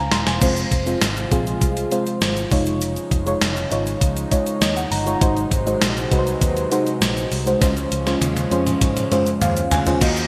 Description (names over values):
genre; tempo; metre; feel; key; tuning
1980s-style pop; 100 BPM; 4/4; straight; unclear; A4 = 440 Hz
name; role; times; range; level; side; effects
mellow FM electric piano; accompaniment; 0.0-10.3 s; Ab3 to C6; -24 LUFS; equal; chorus, phaser
vintage muted picked electric bass; bass; 0.0-10.3 s; Eb1 to Ab2; -28 LUFS; equal; none
gated 80s digital drum machine; drums; 0.1-10.3 s; crash cymbal, hi-hat, kick drum, snare drum, toms; -23 LUFS; equal; gated reverb, gated reverb snare
warm analog pad; sustained chords; 0.4-10.3 s; C3 to F5; -31 LUFS; equal; chorus
tube shaker; percussion; 0.4-10.3 s; none; -39 LUFS; equal; none
crunchy overdriven guitar; accompaniment; 10.0-10.3 s; Eb3 to Eb4; -29 LUFS; equal; analog chorus
room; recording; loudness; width
moderate plate reverb, RT60 2.6 s; bright 1980s-style digital production; -20 LUFS; mono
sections
0.4-10.0 A section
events
drum fill 0.0-0.4, 7.6-10.0; FM electric piano fill 4.3-5.2, 9.1-10.0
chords
0.4 Fm; 2.5 Dbadd9/F; 5.2 Ab7; 7.6 Dbmaj7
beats
| 0.42 1.02 1.62 2.22 | 2.82 3.42 4.02 4.62 | 5.22 5.82 6.42 7.02 | 7.62 8.22 8.82 9.42 | 10.02